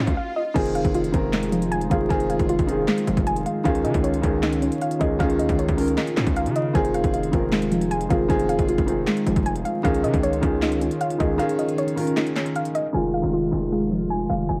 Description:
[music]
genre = hip hop, trap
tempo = 155 BPM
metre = 4/4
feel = half-time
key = F minor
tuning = A4 = 440 Hz
[part]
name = soft round pluck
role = arpeggios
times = 0.0-14.6 s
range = F3 to Ab5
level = -29 LUFS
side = equal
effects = chorus, delay
[part]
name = distorted 808-style bass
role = bass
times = 0.0-14.6 s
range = F1 to Db3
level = -29 LUFS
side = equal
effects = distortion
[part]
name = swell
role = sound effects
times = 0.0-0.6 s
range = none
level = -38 LUFS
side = equal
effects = none
[part]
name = trap drum kit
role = drums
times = 0.1-14.6 s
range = crash cymbal, handclaps, hi-hat, kick drum, snare drum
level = -29 LUFS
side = equal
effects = overdrive
[part]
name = dark concert grand piano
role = accompaniment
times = 0.5-14.6 s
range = Eb3 to Bb4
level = -27 LUFS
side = equal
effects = none
[part]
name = dark analog pad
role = sustained chords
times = 1.3-14.6 s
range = Eb3 to F4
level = -32 LUFS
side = equal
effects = chorus
[sound]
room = light reverb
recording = vinyl crackle, low-pass filter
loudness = -22 LUFS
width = mono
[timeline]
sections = 0.6-12.9 A section; 12.9-14.6 B section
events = swell 0.0-0.6; break 0.2-0.6; kick muted 11.4-12.9; filter sweep 12.9-14.6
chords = 0.0 Dbadd9; 0.6 Fm7; 3.7 Dbadd9; 6.8 Fm7; 9.8 Dbadd9; 12.9 Fm7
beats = 0.17 | 0.56 0.94 1.33 1.72 | 2.10 2.49 2.88 3.27 | 3.65 4.04 4.43 4.81 | 5.20 5.59 5.97 6.36 | 6.75 7.14 7.52 7.91 | 8.30 8.69 9.07 9.46 | 9.85 10.23 10.62 11.01 | 11.39 11.78 12.17 12.56 | 12.94 13.33 13.72 14.10 | 14.49

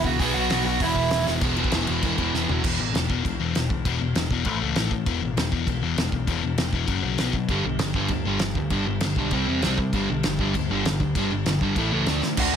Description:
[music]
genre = punk rock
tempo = 197 BPM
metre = 4/4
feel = straight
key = unclear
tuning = A4 = 440 Hz
[part]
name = lead guitar through a small cranked amp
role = melody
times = 0.0-1.3, 12.4-12.6 s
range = E4 to G#5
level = -25 LUFS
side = right 4 dB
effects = overdrive
[part]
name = crunchy overdriven guitar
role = riff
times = 0.0-2.6, 7.5-12.6 s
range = E2 to D4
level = -27 LUFS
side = right 11 dB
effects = none
[part]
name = sludgy distorted guitar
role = riff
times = 0.0-12.6 s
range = E2 to D4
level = -26 LUFS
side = left 10 dB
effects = overdrive
[part]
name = overdriven picked electric bass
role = bass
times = 0.0-12.6 s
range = E1 to D3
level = -29 LUFS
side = equal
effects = none
[part]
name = loose indie drum kit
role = drums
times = 0.0-12.5 s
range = crash cymbal, hi-hat, kick drum, snare drum, toms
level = -27 LUFS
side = equal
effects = none
[sound]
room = light reverb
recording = none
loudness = -21 LUFS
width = side -8 dB against mid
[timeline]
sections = 0.0-1.4 A section; 1.4-2.6 B section; 2.6-12.4 C section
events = drum fill 1.3, 2.3-2.6, 12.2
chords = 0.2 B5; 0.8 E5; 4.5 A5; 5.1 E5; 6.9 F#5; 7.2 B5; 7.5 G; 9.3 C5; 9.9 G5; 11.8 A5; 12.1 D5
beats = | 0.21 0.51 0.82 1.12 | 1.43 1.73 2.03 2.34 | 2.64 2.95 3.25 3.56 | 3.86 4.16 4.47 4.77 | 5.07 5.38 5.68 5.99 | 6.29 6.59 6.90 7.20 | 7.50 7.81 8.11 8.42 | 8.72 9.03 9.33 9.64 | 9.94 10.25 10.55 10.86 | 11.16 11.47 11.78 12.08 | 12.39

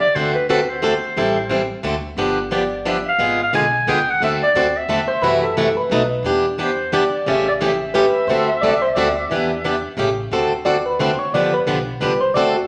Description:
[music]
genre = acoustic string swing (jazz manouche)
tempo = 177 BPM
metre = 3/4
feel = swing 59% on 8ths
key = D mixolydian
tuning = A4 = 442 Hz
[part]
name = warm clarinet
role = melody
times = 0.0-9.9 s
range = B4 to G#5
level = -23 LUFS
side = equal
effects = none
[part]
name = upright bass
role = bass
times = 0.1-12.7 s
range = G1 to F#2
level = -35 LUFS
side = equal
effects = none
[part]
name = picked plugged-in swing-style acoustic guitar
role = accompaniment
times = 0.2-12.6 s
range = B2 to A4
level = -21 LUFS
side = equal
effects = none
[part]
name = soft struck synth lead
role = second line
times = 5.1-12.7 s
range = F#4 to D5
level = -23 LUFS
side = equal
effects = chorus
[sound]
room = wet large studio reverb, RT60 1.1 s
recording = none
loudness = -19 LUFS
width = mono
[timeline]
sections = 0.0-10.3 A section; 10.3-12.7 B section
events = soft synth lead solo 10.3-12.7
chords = 0.1 D7; 1.2 Am7; 1.8 D7; 2.2 G7; 3.2 G#dim7; 4.2 D7; 5.2 F#m7b5; 5.9 B7; 6.2 Em7; 7.3 A7; 8.3 D7; 9.3 Em7; 10.0 A7; 10.3 D7; 11.3 G7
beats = | 0.14 0.48 0.82 | 1.16 1.50 1.84 | 2.18 2.52 2.85 | 3.19 3.53 3.87 | 4.21 4.55 4.89 | 5.23 5.57 5.91 | 6.25 6.58 6.92 | 7.26 7.60 7.94 | 8.28 8.62 8.96 | 9.29 9.63 9.97 | 10.31 10.65 10.99 | 11.33 11.67 12.01 | 12.35

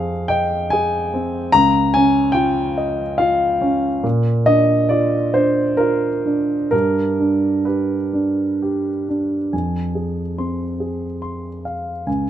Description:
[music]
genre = neoclassical minimalist piano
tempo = 62-73 BPM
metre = 3/4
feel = rubato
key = F minor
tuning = A4 = 438 Hz
[part]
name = warm grand piano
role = solo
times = 0.0-12.3 s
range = Db2 to C6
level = -16 LUFS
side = equal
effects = none
[sound]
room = little or no reverb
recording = minimal, uncompressed stereo recording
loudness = -16 LUFS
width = side -11 dB against mid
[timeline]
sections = 0.0-9.5 A section; 9.5-12.3 B section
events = none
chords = 0.0 Fm7; 1.5 Dbadd9; 4.0 Bb; 6.7 G; 9.5 Fm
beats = 0.69 | 1.52 2.35 3.18 | 4.04 4.90 5.79 | 6.72 7.67 8.60 | 9.53 10.39 11.23 | 12.07

